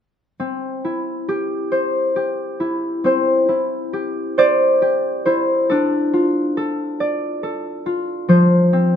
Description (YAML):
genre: children's music, lullaby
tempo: 46 BPM (dotted quarters)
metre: 6/8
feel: rubato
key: C major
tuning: A4 = 443 Hz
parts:
  - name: concert harp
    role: solo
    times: 0.4-9.0 s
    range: F3 to D5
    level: -16 LUFS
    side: left 1 dB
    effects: none
room: light reverb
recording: minimal, uncompressed stereo recording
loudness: -17 LUFS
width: side -9 dB against mid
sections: 0.4-3.0 A section; 3.0-9.0 B section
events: none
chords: 0.4 C; 5.7 Dm; 8.3 F